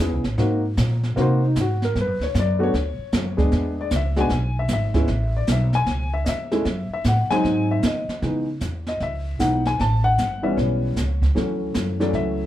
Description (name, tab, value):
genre	jazz piano trio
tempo	153 BPM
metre	4/4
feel	swing 65% on 8ths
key	C# minor from 8.2 s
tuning	A4 = 441 Hz
part	dark upright piano	melody	0.0-12.5 s	E3 to A5	-23 LUFS	left 1 dB	none
part	upright bass	bass	0.0-12.5 s	G1 to D#3	-23 LUFS	equal	none
part	jazz brush drum kit	drums	0.2-12.5 s	brushed snare drum, hi-hat, kick drum, snare drum	-26 LUFS	right 1 dB	none
room	moderate studio reverb, RT60 0.5 s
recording	heard from further back in the room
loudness	-19 LUFS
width	side -13 dB against mid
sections	0.0-8.2 A section; 8.2-12.5 B section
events	upright piano solo 0.0-8.2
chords	0.4 G#9; 1.9 Gmaj7 (rootless); 3.5 E7; 5.1 Amaj7; 6.7 F#m; 7.4 G#7; 8.2 C#m9; 9.8 A7; 11.4 Dmaj7